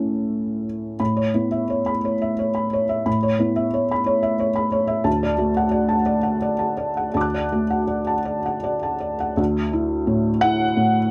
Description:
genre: neoclassical minimalist piano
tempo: 53-60 BPM (dotted quarters)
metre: 6/8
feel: rubato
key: A major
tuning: A4 = 441 Hz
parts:
  - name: felt-muted upright piano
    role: solo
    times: 0.0-11.1 s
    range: D2 to F#6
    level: -22 LUFS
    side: equal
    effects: none
room: light reverb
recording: none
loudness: -22 LUFS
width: mono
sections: 1.0-9.4 A section; 9.4-11.1 B section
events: none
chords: 0.0 A; 1.0 Aadd9; 5.1 D; 9.4 Dadd9

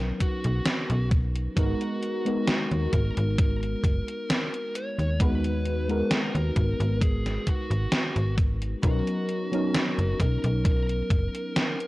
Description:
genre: vaporwave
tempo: 66 BPM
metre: 4/4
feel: straight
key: unclear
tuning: A4 = 441 Hz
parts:
  - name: mellow FM electric piano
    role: accompaniment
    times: 0.0-11.9 s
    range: F#3 to B4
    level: -30 LUFS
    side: left 1 dB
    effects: analog chorus
  - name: slap-like FM bass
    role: bass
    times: 0.0-11.3 s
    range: F#1 to D#2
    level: -26 LUFS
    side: equal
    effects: tube saturation
  - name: smooth overdriven lead guitar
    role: melody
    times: 0.2-11.9 s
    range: F#4 to C#5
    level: -34 LUFS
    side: equal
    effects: vintage 12-bit sampler grit, tape echo
  - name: electronic kick drum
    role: drums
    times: 0.2-11.3 s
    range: none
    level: -24 LUFS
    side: equal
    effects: none
  - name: gated 80s digital drum machine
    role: drums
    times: 0.2-11.9 s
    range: hi-hat, snare drum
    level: -28 LUFS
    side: equal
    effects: gated reverb, gated reverb snare, overdrive
room: little or no reverb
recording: dry, gritty hardware recording, cassette tape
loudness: -23 LUFS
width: side -19 dB against mid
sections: 0.0-11.9 A section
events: none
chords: 0.0 Bmaj9; 1.6 G#m9; 8.8 Bmaj9

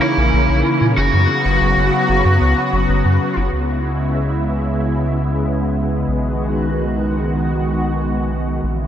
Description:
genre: synthwave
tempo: 94 BPM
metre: 4/4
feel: straight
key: G# minor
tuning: A4 = 441 Hz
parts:
  - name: lead guitar through a small cranked amp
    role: melody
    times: 0.0-3.4 s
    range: E4 to F#4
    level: -20 LUFS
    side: equal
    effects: overdrive, wide subtle chorus, tape echo
  - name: analog string pad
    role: sustained chords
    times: 0.0-8.9 s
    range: C#3 to F#4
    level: -18 LUFS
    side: equal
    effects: ensemble chorus
  - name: round analog bass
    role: bass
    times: 0.2-8.9 s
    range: F#1 to A#2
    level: -20 LUFS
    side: equal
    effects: none
room: wet huge ambient reverb, RT60 8.8 s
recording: dreamy mix soaked in reverb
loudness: -15 LUFS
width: side -10 dB against mid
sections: 0.0-3.5 A section; 3.5-8.9 B section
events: none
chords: 0.0 A#dim; 1.0 F#sus4; 3.5 C#m7; 6.1 G#m7/B

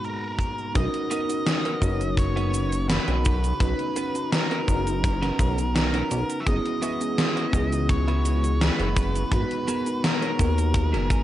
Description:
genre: vaporwave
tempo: 84 BPM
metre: 4/4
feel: straight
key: B major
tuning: A4 = 440 Hz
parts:
  - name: octave-fuzz lead guitar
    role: melody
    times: 0.0-11.2 s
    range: A#4 to E5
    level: -31 LUFS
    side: equal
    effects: distortion, tape echo
  - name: bell-like tine electric piano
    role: accompaniment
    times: 0.0-11.2 s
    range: G#2 to A#5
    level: -30 LUFS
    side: left 1 dB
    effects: wide subtle chorus
  - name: lush unison pad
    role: sustained chords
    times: 0.0-11.2 s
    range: B2 to A#5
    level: -37 LUFS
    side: equal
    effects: none
  - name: gated 80s digital drum machine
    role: drums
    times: 0.0-11.2 s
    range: cabasa, hi-hat, snare drum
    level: -27 LUFS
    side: equal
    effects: gated reverb, gated reverb snare, low-pass filter on perc, low-pass filter on hats, low-pass filter on snare, low-pass filter on room
  - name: kick drum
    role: drums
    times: 0.4-11.2 s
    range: none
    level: -27 LUFS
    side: equal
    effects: none
  - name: chorused synth bass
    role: bass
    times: 0.8-11.2 s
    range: F#1 to D#2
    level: -24 LUFS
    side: equal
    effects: none
  - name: clean electric guitar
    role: riff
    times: 1.1-11.2 s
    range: B3 to G#5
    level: -33 LUFS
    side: right 3 dB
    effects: lush chorus, vintage 12-bit sampler grit
room: little or no reverb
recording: nothing above 11.0 kHz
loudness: -22 LUFS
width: side -13 dB against mid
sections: 0.8-11.2 A section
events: clean electric guitar fill 10.8-11.2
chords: 0.0 G#m9; 0.8 Bmaj9; 6.5 F#9sus4; 9.3 G#m9

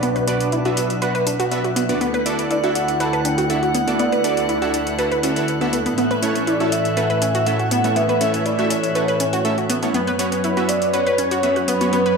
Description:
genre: progressive house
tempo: 121 BPM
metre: 4/4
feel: straight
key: unclear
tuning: A4 = 440 Hz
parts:
  - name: warm velvety synth lead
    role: melody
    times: 0.0-12.2 s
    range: B4 to A5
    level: -23 LUFS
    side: right 1 dB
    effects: chorus, tape echo
  - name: warm studio string section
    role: sustained chords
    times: 0.0-12.2 s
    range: D2 to F#5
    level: -24 LUFS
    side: left 1 dB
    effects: low-pass filter
  - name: analog pluck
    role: arpeggios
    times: 0.0-12.1 s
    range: B3 to B4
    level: -22 LUFS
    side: equal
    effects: chorus, tape echo
  - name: supersaw stab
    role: stabs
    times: 0.0-12.0 s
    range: A3 to F#5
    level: -24 LUFS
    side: right 2 dB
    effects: tape echo
  - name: electronic hi-hat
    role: drums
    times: 0.0-12.2 s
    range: none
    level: -29 LUFS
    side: left 1 dB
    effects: overdrive
  - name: drifting glass-harmonics texture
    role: texture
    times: 0.0-12.2 s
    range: F#6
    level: -35 LUFS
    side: right 2 dB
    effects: chorus, built-in reverb
room: wet plate reverb, RT60 1.1 s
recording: dreamy mix soaked in reverb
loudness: -17 LUFS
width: side -5 dB against mid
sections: 0.0-12.2 A section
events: none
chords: 0.0 Bm; 2.0 Dadd9; 6.0 A; 9.9 F#sus4

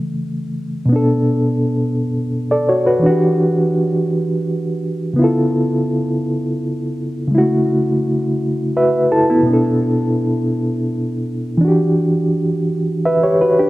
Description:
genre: R&B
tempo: 56 BPM (dotted quarters)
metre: 6/8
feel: straight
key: E dorian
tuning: A4 = 438 Hz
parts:
  - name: reed electric piano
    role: solo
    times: 0.0-13.7 s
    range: B2 to A5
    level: -15 LUFS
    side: equal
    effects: fast tremolo, tape echo
room: light reverb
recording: dark, warm production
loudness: -15 LUFS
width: side -17 dB against mid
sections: 0.9-13.7 A section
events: reed electric piano fill 8.4-9.5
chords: 0.0 C#m; 0.9 Bm7; 3.0 Em9; 5.2 C#7alt; 7.3 F#m7/C#; 9.5 Bm7; 11.6 Em9

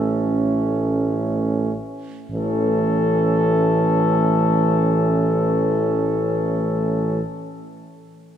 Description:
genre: classical, hymn-like piece for brass band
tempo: free time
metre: none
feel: none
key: A major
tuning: A4 = 440 Hz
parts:
  - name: mellow trumpet section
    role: melody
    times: 0.0-7.2 s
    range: A4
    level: -23 LUFS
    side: left 6 dB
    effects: none
  - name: mellow flugelhorn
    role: second line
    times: 0.0-7.2 s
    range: C#4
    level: -26 LUFS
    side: right 6 dB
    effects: none
  - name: mellow euphonium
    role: accompaniment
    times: 0.0-7.2 s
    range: A3 to C#4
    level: -26 LUFS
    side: equal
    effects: none
  - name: warm trombone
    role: accompaniment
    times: 0.0-7.2 s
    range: E3 to A3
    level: -25 LUFS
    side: right 3 dB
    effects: none
  - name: clear tuba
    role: bass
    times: 0.0-7.2 s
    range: A1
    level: -23 LUFS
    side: equal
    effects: none
room: wet church reverb, RT60 3.1 s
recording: dark, warm production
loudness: -17 LUFS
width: side -9 dB against mid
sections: 0.0-2.3 A section; 2.3-8.4 B section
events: slowing down 0.0-2.3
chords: 0.0 A

